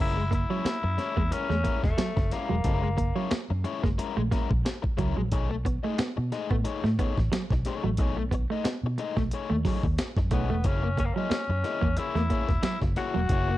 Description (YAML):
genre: funk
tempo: 90 BPM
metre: 4/4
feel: swing 56% on 16ths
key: F# mixolydian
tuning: A4 = 440 Hz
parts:
  - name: raspy tenor saxophone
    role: melody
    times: 0.0-3.3, 10.3-13.6 s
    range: A3 to F#4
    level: -32 LUFS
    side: left 3 dB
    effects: none
  - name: biting overdriven guitar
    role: accompaniment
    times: 0.0-13.5 s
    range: G#3 to D#5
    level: -33 LUFS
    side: left 6 dB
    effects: none
  - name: vintage muted fingered electric bass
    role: bass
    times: 0.0-13.6 s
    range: E1 to B2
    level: -29 LUFS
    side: equal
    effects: none
  - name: semi-hollow electric guitar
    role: riff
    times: 0.2-13.5 s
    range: F#3 to B3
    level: -32 LUFS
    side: right 5 dB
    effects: none
  - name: breakbeat sampler-style drum kit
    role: drums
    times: 0.3-13.5 s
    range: hi-hat, kick drum, snare drum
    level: -29 LUFS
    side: equal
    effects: vintage 12-bit sampler grit
room: light reverb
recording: dark, warm production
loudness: -25 LUFS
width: side -15 dB against mid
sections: 0.0-13.6 A section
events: none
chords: 0.0 F#9; 5.3 B13; 10.6 F#9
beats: 0.66 1.32 1.99 | 2.65 3.32 3.99 4.65 | 5.32 5.99 6.65 7.32 | 7.98 8.65 9.31 9.98 | 10.64 11.31 11.97 12.64 | 13.30